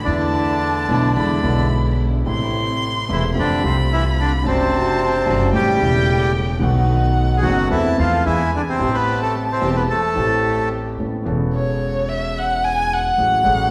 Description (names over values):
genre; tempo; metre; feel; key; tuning
tango; 110 BPM; 4/4; rubato; A minor; A4 = 440 Hz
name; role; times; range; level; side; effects
bandoneon; melody; 0.0-10.7 s; C3 to B4; -23 LUFS; equal; none
warm violin; second line; 0.0-13.7 s; C#5 to C6; -25 LUFS; equal; none
warm concert grand piano; accompaniment; 0.0-13.7 s; E1 to A4; -25 LUFS; equal; none
warm symphonic string section; stabs; 0.0-11.0 s; G#3 to G4; -31 LUFS; equal; none
upright bass; bass; 0.0-13.7 s; E1 to F2; -24 LUFS; equal; none
room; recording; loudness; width
wet recital hall reverb, RT60 1.4 s; recorded in a church or concert hall; -19 LUFS; mono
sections
0.0-11.0 A section; 11.0-13.7 B section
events
violin solo 11.0-13.7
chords
0.1 E7sus4; 1.2 E7; 2.3 Am; 3.4 F; 4.5 D7/F#; 5.5 A7; 6.6 B7; 7.7 Am/E; 8.3 E; 8.8 Am7; 11.0 Aadd9; 13.2 F#madd9/A